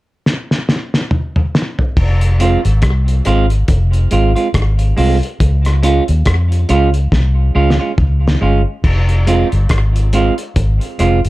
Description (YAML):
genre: roots reggae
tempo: 70 BPM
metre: 4/4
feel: swing 58% on 16ths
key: F minor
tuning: A4 = 440 Hz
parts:
  - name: cloth-damped thuddy drum kit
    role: drums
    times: 0.3-11.3 s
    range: crash cymbal, hi-hat, kick drum, rim click, snare drum, toms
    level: -17 LUFS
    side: equal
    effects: slapback echo
  - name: vintage muted fingered electric bass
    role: bass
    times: 2.0-11.3 s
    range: F1 to F2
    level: -13 LUFS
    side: equal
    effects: none
  - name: semi-hollow electric guitar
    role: accompaniment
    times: 2.4-11.2 s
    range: Ab3 to F4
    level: -17 LUFS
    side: right 3 dB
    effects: tape echo
room: little or no reverb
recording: dark, warm production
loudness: -12 LUFS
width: side -18 dB against mid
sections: 0.0-2.0 A section; 2.0-8.8 B section; 8.8-11.3 C section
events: drum fill 0.2-2.0, 7.1-8.8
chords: 0.0 N.C.; 2.0 Fm; 5.4 Db; 8.8 Fm